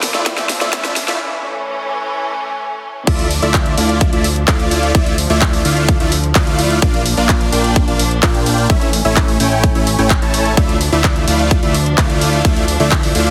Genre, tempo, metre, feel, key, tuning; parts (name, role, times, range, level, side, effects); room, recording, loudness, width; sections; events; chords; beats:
EDM, festival progressive house; 128 BPM; 4/4; straight; D harmonic minor; A4 = 439 Hz
rich symphonic string section; sustained chords; 0.0-13.3 s; E3 to D4; -26 LUFS; equal; sidechain pumping
fat analog bass; bass; 0.0-13.3 s; A1 to D2; -21 LUFS; equal; sidechain pumping
big-room dance drum kit; drums; 0.0-13.3 s; crash cymbal, handclaps, hi-hat, snare drum; -22 LUFS; equal; overdrive
riser; sound effects; 0.0-1.2 s; -32 LUFS; equal
supersaw chords; riff; 0.1-13.3 s; A3 to A5; -20 LUFS; equal; sidechain pumping, digital delay
electronic kick drum; drums; 0.3-13.0 s; -17 LUFS; equal; overdrive, high-pass filter on kick
light reverb, digital ambience; heavily compressed radio sound, multiband compression, high-pass filter; -15 LUFS; mono
0.0-3.1 A section; 3.1-13.3 B section
build-up 0.0-3.1; drum fill 0.0-1.2; filter sweep on supersaw synth 0.0-3.1; filter sweep 0.0-3.1; break 1.2-3.1; drop 3.1-13.3
0.0 Bb; 1.2 A; 3.1 Dmadd9; 6.8 Bb; 8.7 A; 10.6 Dmadd9
0.26 0.73 | 1.20 1.67 2.13 2.60 | 3.07 3.54 4.01 4.48 | 4.95 5.42 5.88 6.35 | 6.82 7.29 7.76 8.23 | 8.70 9.17 9.63 10.10 | 10.57 11.04 11.51 11.98 | 12.45 12.92